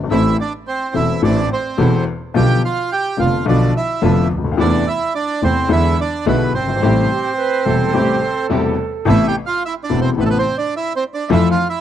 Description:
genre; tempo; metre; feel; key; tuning
tango; 107 BPM; 4/4; rubato; A minor; A4 = 440 Hz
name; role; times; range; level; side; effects
clear baby grand piano; accompaniment; 0.0-11.5 s; E1 to A4; -17 LUFS; left 5 dB; none
rich double bass; bass; 0.0-11.5 s; E1 to F2; -19 LUFS; right 3 dB; none
bandoneon; melody; 0.1-11.8 s; B3 to G5; -20 LUFS; right 4 dB; none
warm studio string section; stabs; 0.1-11.5 s; F3 to A4; -26 LUFS; right 6 dB; slapback echo
silver concert flute; second line; 7.1-9.1 s; G4 to B4; -22 LUFS; right 9 dB; none
room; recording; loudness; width
small room ambience; dry, close 1970s-style studio recording; -14 LUFS; side -10 dB against mid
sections
0.0-9.1 A section; 9.1-11.8 B section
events
none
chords
0.1 Am; 2.4 Bdim; 4.6 Am/E; 5.7 E7; 6.8 Am7; 9.1 Amadd9; 11.3 Fmaj7

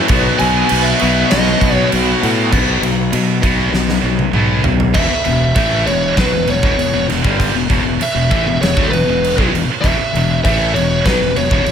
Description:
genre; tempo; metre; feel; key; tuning
hard rock; 98 BPM; 4/4; straight; unclear; A4 = 443 Hz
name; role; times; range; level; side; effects
percussive tonewheel organ; sustained chords; 0.0-2.5 s; B3 to C#5; -28 LUFS; left 1 dB; none
biting overdriven guitar; riff; 0.0-2.5 s; B2 to B3; -21 LUFS; equal; tremolo
distorted electric guitar; riff; 0.0-11.7 s; E2 to B3; -20 LUFS; left 10 dB; overdrive
heavy high-gain guitar; riff; 0.0-11.7 s; E2 to B3; -20 LUFS; right 11 dB; distortion
fuzz fingered electric bass; bass; 0.1-11.7 s; E1 to B2; -19 LUFS; equal; overdrive
big rock drum kit; drums; 0.1-11.7 s; crash cymbal, kick drum, ride cymbal, snare drum, toms; -18 LUFS; equal; none
biting lead guitar; melody; 0.4-11.7 s; A4 to G#5; -18 LUFS; right 1 dB; overdrive, digital delay
room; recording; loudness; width
light reverb, small room ambience; none; -12 LUFS; side -8 dB against mid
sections
0.0-2.5 A section; 2.5-5.0 B section; 5.0-11.7 C section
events
drum fill 3.7-5.0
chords
0.1 B; 2.5 B5; 5.0 E5

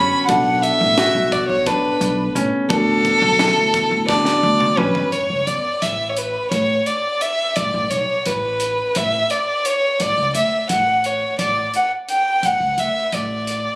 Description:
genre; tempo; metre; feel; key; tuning
progressive instrumental, band music in an uneven meter; 173 BPM (eighths); 7/8; straight; A major; A4 = 441 Hz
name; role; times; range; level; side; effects
warm violin; melody; 0.0-13.8 s; A4 to B5; -17 LUFS; equal; tape echo
overdriven tine electric piano; accompaniment; 0.0-5.1 s; B2 to A4; -25 LUFS; equal; lush chorus
clear concert grand piano; arpeggios; 0.0-5.1 s; C#4 to F#4; -22 LUFS; left 1 dB; tape echo
upright bass; bass; 0.0-13.7 s; A1 to E2; -25 LUFS; equal; none
crisp fusion drum kit; drums; 0.3-13.6 s; hi-hat, kick drum, snare drum, toms; -25 LUFS; equal; none
room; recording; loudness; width
light reverb; recorded on a phone in the room, club reverb; -16 LUFS; side -22 dB against mid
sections
0.0-5.1 A section; 5.1-13.8 B section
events
drum fill 4.1-5.1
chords
0.3 Bm7; 2.7 D6; 5.1 A; 7.6 Aadd9; 10.0 Asus4

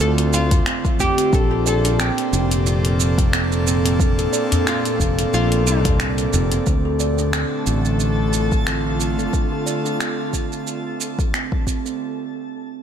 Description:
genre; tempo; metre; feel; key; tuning
organic downtempo; 90 BPM; 4/4; swing 56% on 16ths; D minor; A4 = 436 Hz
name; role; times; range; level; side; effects
oud; melody; 0.0-6.3 s; D4 to A4; -24 LUFS; left 1 dB; ping-pong delay
airy breathy pad; sustained chords; 0.0-12.0 s; Bb2 to D5; -24 LUFS; left 1 dB; chorus, sidechain pumping
fretless electric bass; bass; 0.0-9.3 s; F1 to D2; -20 LUFS; equal; sidechain pumping
deep house drum kit; drums; 0.0-12.0 s; finger snaps, hi-hat, shaker; -25 LUFS; right 2 dB; none
electronic kick drum; drums; 0.5-11.8 s; none; -20 LUFS; equal; none
udu; percussion; 0.5-6.5 s; none; -23 LUFS; left 2 dB; none
kalimba; arpeggios; 0.7-12.0 s; C4 to D5; -26 LUFS; right 4 dB; low-pass filter, ping-pong delay
twinkling granular texture; texture; 7.2-12.0 s; A4 to A5; -32 LUFS; left 3 dB; built-in reverb
room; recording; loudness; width
light reverb, digital ambience; none; -17 LUFS; side -8 dB against mid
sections
0.0-6.7 A section; 6.7-12.0 B section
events
break 6.0-6.7; filter sweep on kalimba 6.7-12.0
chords
0.0 Dm7; 1.3 Bbmaj7; 6.7 Dm7

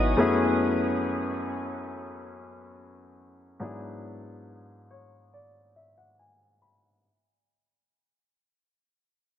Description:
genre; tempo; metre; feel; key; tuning
R&B; 70 BPM; 4/4; straight; unclear; A4 = 435 Hz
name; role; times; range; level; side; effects
warm grand piano; accompaniment; 0.0-7.1 s; F#2 to B5; -26 LUFS; left 2 dB; low-pass filter
room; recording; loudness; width
moderate lush hall reverb, RT60 2.9 s; none; -25 LUFS; side -10 dB against mid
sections
0.0-7.0 A section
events
fade-out 0.0-7.0; grand piano fill 0.0, 4.5-7.0; filter sweep on grand piano 0.0-7.0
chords
0.2 F#m11; 3.6 E9/G#

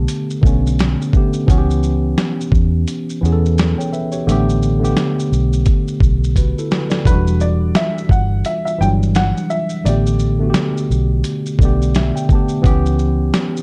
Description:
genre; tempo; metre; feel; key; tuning
lo-fi hip hop; 86 BPM; 4/4; swing 57% on 16ths; unclear; A4 = 440 Hz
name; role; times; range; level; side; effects
warm upright piano; melody; 0.0-0.7, 7.1-11.9 s; A4 to G5; -25 LUFS; equal; plate reverb
tine electric piano; accompaniment; 0.0-13.6 s; D3 to A5; -21 LUFS; equal; none
vintage muted fingered electric bass; bass; 0.0-13.3 s; E1 to E2; -19 LUFS; equal; none
dusty soul sampler-style drum kit; drums; 0.1-13.6 s; hi-hat, kick drum, shaker, snare drum; -19 LUFS; equal; none
room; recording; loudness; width
light reverb; dark, warm production; -16 LUFS; mono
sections
0.0-13.6 A section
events
drum fill 6.4-7.1; tine electric piano fill 11.2-12.6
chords
0.0 A9sus4; 1.5 C#m7b5; 4.3 A9sus4; 7.1 Em9; 9.9 A9sus4; 12.6 C#m7b5

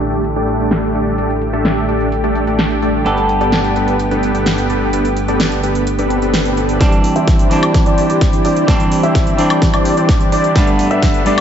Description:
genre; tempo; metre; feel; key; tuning
EDM, festival progressive house; 128 BPM; 4/4; straight; G major; A4 = 440 Hz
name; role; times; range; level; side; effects
semi-hollow electric guitar; accompaniment; 0.0-11.4 s; G2 to A4; -19 LUFS; right 1 dB; sidechain pumping, ping-pong delay
lush unison pad; sustained chords; 0.0-11.4 s; D3 to A4; -21 LUFS; equal; chorus, sidechain pumping
dense compressed supersaw; riff; 0.0-11.4 s; A3 to E5; -18 LUFS; equal; sidechain pumping, low-pass filter, ping-pong delay
wide detuned saw bass; bass; 0.0-6.8 s; G1 to A1; -22 LUFS; equal; chorus, sidechain pumping
big-room dance drum kit; drums; 0.0-11.4 s; hi-hat, snare drum, woodblock; -21 LUFS; left 1 dB; none
swell; sound effects; 6.1-6.8 s; none; -26 LUFS; left 2 dB; none
bright grand piano; arpeggios; 6.8-11.4 s; D5 to E5; -21 LUFS; left 1 dB; sidechain pumping, low-pass filter, ping-pong delay
electronic kick drum; drums; 6.8-11.1 s; none; -14 LUFS; equal; none
room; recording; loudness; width
light reverb; low-pass filter, nothing above 7.8 kHz; -12 LUFS; side -8 dB against mid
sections
0.0-6.8 A section; 6.8-11.4 B section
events
filter sweep on analog synth pad 0.0-6.8; filter sweep 0.0-6.8; swell 6.1-6.8; build-up 6.8-11.4; drum fill 6.8-11.4; filter sweep on supersaw synth 6.8-11.4; filter sweep on grand piano 6.8-11.4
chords
0.0 Dsus4/A; 3.1 Gadd9; 6.8 Cadd9; 10.6 Gadd9

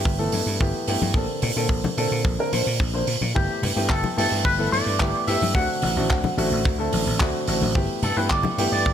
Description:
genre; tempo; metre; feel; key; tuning
nu-disco, nu disco; 109 BPM; 4/4; straight; G major; A4 = 440 Hz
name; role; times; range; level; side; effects
warm baby grand piano; accompaniment; 0.0-8.9 s; D3 to C5; -25 LUFS; left 1 dB; tape echo
vintage slap bass; bass; 0.1-8.9 s; G1 to Bb2; -26 LUFS; equal; sidechain pumping
kick drum; drums; 0.1-8.9 s; none; -24 LUFS; equal; none
tight funk drum kit; drums; 0.3-8.7 s; handclaps, hi-hat; -28 LUFS; right 3 dB; none
congas; percussion; 0.3-8.6 s; none; -28 LUFS; left 4 dB; none
electric guitar with an envelope filter; melody; 3.3-8.9 s; G4 to F#5; -26 LUFS; equal; tremolo, digital delay
room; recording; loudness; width
light reverb, small room ambience; none; -20 LUFS; side -9 dB against mid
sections
0.0-8.9 A section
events
none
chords
0.0 G69; 1.2 Bbmaj9; 3.4 G69; 5.6 D7; 7.8 G69

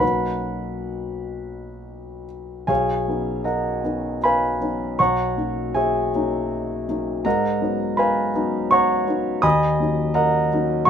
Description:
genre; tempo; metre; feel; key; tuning
classical, impressionist solo piano; 65-85 BPM; 3/4; rubato; B lydian; A4 = 436 Hz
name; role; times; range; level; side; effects
warm concert grand piano; solo; 0.0-10.9 s; B1 to D#6; -20 LUFS; equal; none
room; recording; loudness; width
light reverb; minimal, uncompressed stereo recording; -19 LUFS; side -8 dB against mid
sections
0.0-2.7 A section; 2.7-10.9 B section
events
none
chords
0.0 Bmaj9; 2.7 Badd9; 5.0 F#13/B; 7.2 G#m11; 9.4 D#m7

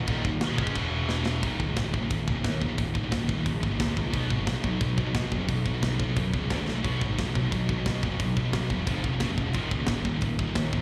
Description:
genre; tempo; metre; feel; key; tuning
heavy metal; 177 BPM; 4/4; straight; Eb phrygian; A4 = 440 Hz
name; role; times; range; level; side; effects
rich studio string section; sustained chords; 0.0-1.4 s; Eb3 to E5; -47 LUFS; equal; none
heavy high-gain guitar; riff; 0.0-10.8 s; Eb2 to D4; -36 LUFS; equal; distortion
scooped high-gain guitar; riff; 0.0-10.8 s; Eb2 to D4; -35 LUFS; equal; distortion, slapback echo
fuzz picked electric bass; bass; 0.0-10.8 s; Eb1 to B2; -32 LUFS; equal; overdrive
tight metal drum kit; drums; 0.1-10.8 s; china cymbal, hi-hat, kick drum, snare drum; -33 LUFS; equal; none
room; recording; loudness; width
little or no reverb; live gig heard through the venue's PA, recital hall reverb; -28 LUFS; mono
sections
0.0-1.4 A section; 1.4-10.8 B section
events
drum fill 1.1-1.4, 6.7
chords
0.0 Ebm; 0.8 E5; 1.4 Eb5; 4.1 B5; 6.5 D5; 6.8 B5; 8.9 F5; 9.2 Gb5; 9.6 Eb5

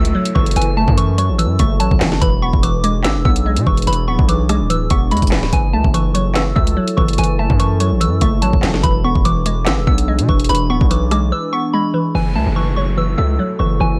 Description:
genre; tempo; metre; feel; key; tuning
hip hop, drill; 145 BPM; 4/4; half-time; F# minor; A4 = 441 Hz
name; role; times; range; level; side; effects
soft synth bell; melody; 0.0-14.0 s; G#5 to E6; -25 LUFS; equal; chorus, phaser, low-pass filter
glassy wavetable pluck; accompaniment; 0.0-14.0 s; E3 to B3; -23 LUFS; equal; chorus, low-pass filter
glassy FM pad; sustained chords; 0.0-14.0 s; E3 to A4; -28 LUFS; equal; ensemble chorus, built-in reverb
distorted 808-style bass; bass; 0.0-14.0 s; D1 to B2; -20 LUFS; equal; distortion
drill drum kit; drums; 0.0-11.2 s; handclaps, hi-hat, kick drum, rim click, snare drum; -19 LUFS; equal; none
downlifter; sound effects; 0.0-2.2, 12.1-14.0 s; none; -34 LUFS; equal; none
room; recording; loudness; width
little or no reverb; none; -16 LUFS; mono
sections
0.0-12.1 A section; 12.1-14.0 B section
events
break 11.3-12.1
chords
0.0 F#m7; 2.2 E7; 5.5 F#m7; 8.8 E7; 12.1 F#m7

